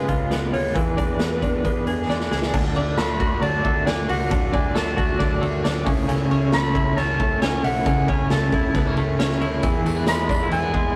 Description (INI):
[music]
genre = jangly indie pop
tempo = 135 BPM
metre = 4/4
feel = straight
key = unclear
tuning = A4 = 437 Hz
[part]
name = growling clarinet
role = melody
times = 0.0-11.0 s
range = B4 to B5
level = -28 LUFS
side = equal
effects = none
[part]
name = crunchy overdriven guitar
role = accompaniment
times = 0.0-11.0 s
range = C#3 to A4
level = -32 LUFS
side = equal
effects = none
[part]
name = twelve-string electric guitar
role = arpeggios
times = 0.0-11.0 s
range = C#3 to G#4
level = -26 LUFS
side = equal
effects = tremolo
[part]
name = vintage muted picked electric bass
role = bass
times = 0.1-10.9 s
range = B1 to E2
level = -30 LUFS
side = equal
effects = none
[part]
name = raw garage drum kit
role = drums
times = 0.1-10.8 s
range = crash cymbal, hi-hat, kick drum, ride cymbal, snare drum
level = -26 LUFS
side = equal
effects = none
[part]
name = tambourine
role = percussion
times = 9.6-10.6 s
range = none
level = -46 LUFS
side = equal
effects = none
[sound]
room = wet booth ambience, RT60 0.2 s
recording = rough rehearsal-room recording, tube saturation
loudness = -21 LUFS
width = mono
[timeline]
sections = 0.0-2.5 A section; 2.5-11.0 B section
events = drum fill 2.1-2.5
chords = 0.0 C#7; 0.8 E7; 2.5 D; 5.9 A; 9.6 E